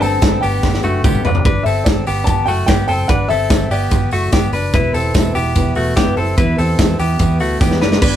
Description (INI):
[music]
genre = jangly indie pop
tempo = 146 BPM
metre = 4/4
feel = straight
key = unclear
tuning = A4 = 437 Hz
[part]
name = warm upright piano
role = melody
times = 0.0-4.5 s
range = D5 to A5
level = -21 LUFS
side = left 3 dB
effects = none
[part]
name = fingerpicked plugged-in steel-string acoustic guitar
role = accompaniment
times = 0.0-1.5, 4.7-8.2 s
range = E3 to B4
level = -23 LUFS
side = equal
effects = none
[part]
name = direct-recorded clean electric guitar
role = arpeggios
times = 0.0-8.2 s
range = A3 to B4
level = -20 LUFS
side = left 1 dB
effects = none
[part]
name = vintage muted fingered electric bass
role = bass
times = 0.0-8.2 s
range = E1 to E2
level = -19 LUFS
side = right 1 dB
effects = none
[part]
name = modern studio drum kit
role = drums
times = 0.0-8.1 s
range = crash cymbal, hi-hat, kick drum, ride cymbal, snare drum, toms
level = -16 LUFS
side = equal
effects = none
[part]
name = tambourine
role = percussion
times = 0.0-7.9 s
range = none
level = -36 LUFS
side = right 5 dB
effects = none
[sound]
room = moderate small room ambience, RT60 0.5 s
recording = rough rehearsal-room recording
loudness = -13 LUFS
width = side -10 dB against mid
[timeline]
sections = 0.0-1.4 A section; 1.4-8.0 B section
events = drum fill 0.6-1.4, 7.6-8.0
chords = 0.0 Gadd9; 4.7 Em